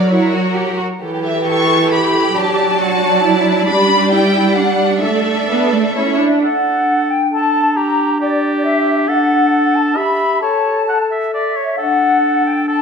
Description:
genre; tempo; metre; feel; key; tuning
classical, dramatic, fast romantic movement for symphony orchestra; 133 BPM; 3/4; straight; D major; A4 = 439 Hz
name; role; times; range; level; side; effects
warm symphonic violin section; melody; 0.0-6.2 s; C#5 to C#6; -18 LUFS; left 4 dB; none
rich chamber violin section; second line; 0.0-6.2 s; D4 to D5; -21 LUFS; equal; none
rich symphonic viola section; accompaniment; 0.0-6.4 s; E3 to D4; -16 LUFS; right 3 dB; none
clear symphonic cello section; bass; 0.0-6.2 s; D4 to A4; -20 LUFS; right 3 dB; none
flute section; second line; 6.0-12.8 s; D5 to B5; -16 LUFS; left 2 dB; none
clear clarinet; second line; 6.4-12.8 s; D4 to A4; -18 LUFS; left 1 dB; none
clear oboe; second line; 6.4-12.8 s; G4 to F#5; -20 LUFS; right 1 dB; none
room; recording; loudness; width
wet recital hall reverb, RT60 1.5 s; minimal, uncompressed stereo recording; -12 LUFS; side -6 dB against mid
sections
0.0-6.4 A section; 6.4-12.8 B section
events
none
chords
0.0 F#; 1.0 A7/E; 2.4 D/F#; 3.7 G; 5.0 Asus4; 6.0 A/C#; 6.4 D; 7.8 Gm/D; 9.1 D; 10.0 Em/G; 10.4 A; 11.8 D

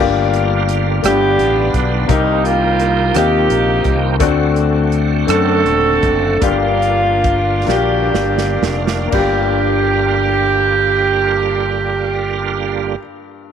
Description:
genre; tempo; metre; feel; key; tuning
slow gospel; 38-57 BPM (dotted quarters); 6/8; straight; G minor; A4 = 440 Hz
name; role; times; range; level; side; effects
clear baby grand piano; accompaniment; 0.0-13.5 s; G2 to A4; -19 LUFS; left 12 dB; none
bright tonewheel organ; sustained chords; 0.0-13.0 s; D3 to G4; -24 LUFS; right 11 dB; slow rotary speaker, chorus vibrato
fretless electric bass; bass; 0.0-12.9 s; Eb1 to F#2; -19 LUFS; equal; none
natural country drum kit; drums; 0.3-9.4 s; crash cymbal, hi-hat, kick drum, rim click, snare drum; -21 LUFS; right 3 dB; none
clear saxophone section; melody; 1.0-13.0 s; G3 to A4; -16 LUFS; right 4 dB; none
room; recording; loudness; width
light reverb, small room ambience; 1960s-style stereo with parts hard left and right; -13 LUFS; side -8 dB against mid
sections
0.0-9.1 A section; 9.1-13.5 B section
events
slowing down 4.2-9.1; drum fill 7.7-9.1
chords
0.0 Gm7; 1.0 G7; 2.1 Cm7; 4.2 D7; 6.4 Gm7

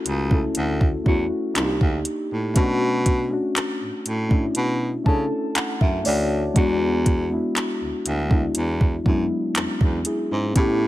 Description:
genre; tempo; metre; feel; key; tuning
contemporary R&B; 60 BPM; 4/4; straight; unclear; A4 = 440 Hz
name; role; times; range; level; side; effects
muted felt-like synth keys; accompaniment; 0.0-10.9 s; F#3 to A5; -23 LUFS; left 1 dB; chorus
breathy baritone saxophone; bass; 0.1-10.9 s; C2 to C#3; -25 LUFS; right 1 dB; none
smooth R&B drum kit; drums; 0.1-10.8 s; handclaps, hi-hat, kick drum; -21 LUFS; right 1 dB; none
room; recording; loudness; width
digital ambience; none; -19 LUFS; side -15 dB against mid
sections
0.0-10.9 A section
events
synth keys fill 4.6-6.6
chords
0.0 Dmaj9; 1.6 Cm9; 2.6 Bm9; 6.6 E7

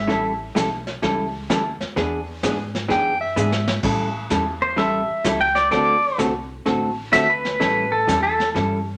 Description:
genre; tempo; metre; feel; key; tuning
country, western swing; 128 BPM; 4/4; swing 67% on 8ths; A major; A4 = 440 Hz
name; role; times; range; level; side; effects
breathy clarinet; second line; 0.0-3.7 s; E5 to G5; -26 LUFS; equal; none
upright bass; bass; 0.0-9.0 s; A1 to A2; -32 LUFS; equal; none
vintage hollow-body jazz guitar; accompaniment; 0.1-8.8 s; D3 to A4; -25 LUFS; equal; none
vintage brush drum kit; drums; 0.1-9.0 s; brushed snare drum, crash cymbal, hi-hat, kick drum, snare drum; -31 LUFS; equal; none
pedal steel guitar; second line; 4.6-8.5 s; A4 to G5; -21 LUFS; equal; none
room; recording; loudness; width
wet studio reverb, RT60 0.8 s; none; -21 LUFS; mono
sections
0.0-3.8 A section; 3.8-9.0 A section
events
clarinet solo 0.0-3.8; drum fill 3.4-3.8; pedal steel guitar solo 3.8-9.0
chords
0.1 A7; 2.0 E7; 3.8 A7; 5.7 D7; 7.6 A7

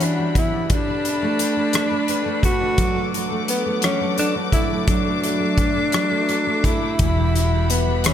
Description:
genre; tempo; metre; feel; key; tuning
six-eight pop ballad; 57 BPM (dotted quarters); 6/8; straight; D major; A4 = 440 Hz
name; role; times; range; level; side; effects
mellow tenor saxophone; melody; 0.0-8.1 s; B3 to F#4; -22 LUFS; equal; dub echo
fingerpicked steel-string acoustic guitar; accompaniment; 0.0-8.1 s; E3 to B4; -25 LUFS; equal; double-tracked left and right, dub echo
warm studio string section; sustained chords; 0.0-8.1 s; F#3 to D6; -27 LUFS; left 2 dB; none
modern studio drum kit; drums; 0.0-8.1 s; hi-hat, kick drum, rim click; -23 LUFS; equal; none
vintage muted fingered electric bass; bass; 7.0-8.1 s; E1; -20 LUFS; equal; none
room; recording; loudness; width
light reverb, studio ambience; echo-heavy mix; -18 LUFS; side -10 dB against mid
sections
0.0-8.1 A section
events
none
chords
0.0 Emadd9; 0.7 Gadd9; 2.8 D/F#; 7.0 Emadd9

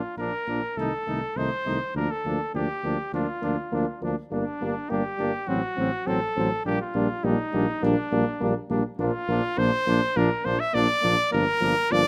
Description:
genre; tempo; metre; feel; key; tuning
classical, brass quintet; 102 BPM; 4/4; straight; unclear; A4 = 440 Hz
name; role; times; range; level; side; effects
clear trumpet; melody; 0.0-12.1 s; D4 to E5; -29 LUFS; equal; none
warm trumpet; second line; 0.0-12.0 s; C4 to Eb4; -37 LUFS; equal; none
mellow French horn; accompaniment; 0.2-12.0 s; A3 to C4; -33 LUFS; equal; none
warm euphonium; accompaniment; 0.2-12.0 s; Eb3 to G3; -34 LUFS; equal; none
mellow tuba; bass; 0.2-12.0 s; G1 to D2; -31 LUFS; equal; none
room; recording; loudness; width
light reverb; close, detailed microphones; -26 LUFS; mono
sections
0.0-12.1 A section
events
none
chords
0.0 Bb; 0.8 Adim/C; 2.0 Bb/D; 4.3 Gm; 5.5 F#dim/A; 6.6 Gm/Bb; 9.0 Bb; 11.3 Gm7

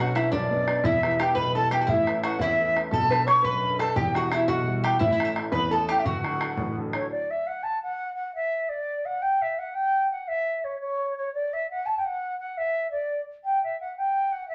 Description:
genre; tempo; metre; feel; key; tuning
celtic folk, Celtic jig; 114 BPM (dotted quarters); 6/8; straight; D major; A4 = 441 Hz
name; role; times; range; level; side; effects
baroque flute; melody; 0.0-14.5 s; C#5 to C#6; -28 LUFS; equal; none
bowl-back mandolin; second line; 0.0-6.7 s; D4 to C#5; -35 LUFS; equal; none
open-back banjo; second line; 0.0-6.7 s; D4 to C#5; -34 LUFS; equal; none
warm concert grand piano; accompaniment; 0.0-7.1 s; D1 to B4; -31 LUFS; equal; none
bodhran; percussion; 0.2-7.0 s; none; -33 LUFS; equal; none
room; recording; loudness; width
wet studio reverb, RT60 0.6 s; none; -26 LUFS; mono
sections
0.0-7.1 A section; 7.1-14.5 B section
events
none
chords
0.0 Bmadd9; 0.8 Em; 1.9 Aadd9; 2.9 Bm7; 4.0 Emadd9; 5.0 A; 6.1 D; 7.1 N.C.

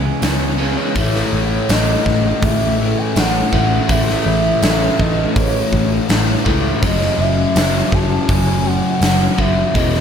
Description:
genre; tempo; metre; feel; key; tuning
rock, shoegaze and dream pop; 82 BPM; 4/4; straight; unclear; A4 = 440 Hz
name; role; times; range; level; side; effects
hollow clarinet-like synth lead; melody; 0.0-10.0 s; C#5 to A5; -21 LUFS; right 2 dB; chorus, digital delay
string machine, cellos; sustained chords; 0.0-10.0 s; G#3 to B5; -26 LUFS; right 1 dB; phaser, ensemble chorus
clean electric guitar; riff; 0.0-0.9 s; C#3 to G#4; -25 LUFS; right 13 dB; reverse reverb
overdriven electric guitar; riff; 0.0-10.0 s; E2 to C#4; -21 LUFS; equal; none
thick fuzz guitar; riff; 0.0-10.0 s; E2 to C#4; -22 LUFS; left 8 dB; distortion, ensemble chorus
vintage muted picked electric bass; bass; 0.0-10.0 s; E1 to C#2; -20 LUFS; equal; none
big rock drum kit; drums; 0.2-10.0 s; hi-hat, kick drum, snare drum; -19 LUFS; equal; none
tambourine; percussion; 0.2-9.2 s; none; -31 LUFS; right 16 dB; none
room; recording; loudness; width
small room reverb; none; -13 LUFS; side -8 dB against mid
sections
1.0-10.0 A section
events
none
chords
0.0 C#m7; 1.0 Amaj7; 6.8 F#m7

